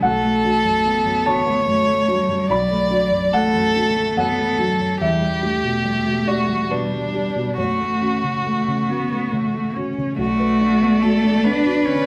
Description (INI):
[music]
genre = neoclassical piano and strings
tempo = 71 BPM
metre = 3/4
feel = rubato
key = B minor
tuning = A4 = 440 Hz
[part]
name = warm violin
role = melody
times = 0.0-12.1 s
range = D4 to D5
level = -23 LUFS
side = equal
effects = none
[part]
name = clear cello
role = second line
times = 0.0-12.1 s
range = F#3 to D4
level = -24 LUFS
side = equal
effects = none
[part]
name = felt-muted upright piano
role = accompaniment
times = 0.0-12.1 s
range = B1 to B5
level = -26 LUFS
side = equal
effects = none
[part]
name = dark viola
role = accompaniment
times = 10.2-12.1 s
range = D5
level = -32 LUFS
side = equal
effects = none
[sound]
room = wet large studio reverb, RT60 1.0 s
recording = band playing live in one room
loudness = -19 LUFS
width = mono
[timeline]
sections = 0.0-10.2 A section; 10.2-12.1 B section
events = none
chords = 0.0 Bm7; 5.0 Em7; 7.6 F#m; 10.2 Bm7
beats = | 0.03 0.85 1.68 | 2.50 3.34 4.18 | 5.01 5.85 6.71 | 7.57 8.45 9.32 | 10.19 11.03 11.87